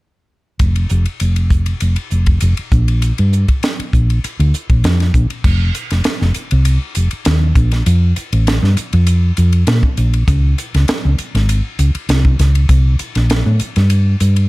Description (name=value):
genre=electric jazz fusion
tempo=99 BPM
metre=4/4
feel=straight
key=F mixolydian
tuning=A4 = 440 Hz
part: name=hollow-body short-scale fingered electric bass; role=bass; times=0.6-14.5 s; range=F1 to Bb2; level=-12 LUFS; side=equal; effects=none
part: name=crisp fusion drum kit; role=drums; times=0.6-14.5 s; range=crash cymbal, hi-hat, kick drum, ride cymbal, snare drum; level=-18 LUFS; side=equal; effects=none
room=little or no reverb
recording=none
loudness=-12 LUFS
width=side -21 dB against mid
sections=0.6-5.4 A section; 5.4-14.5 B section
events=none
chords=none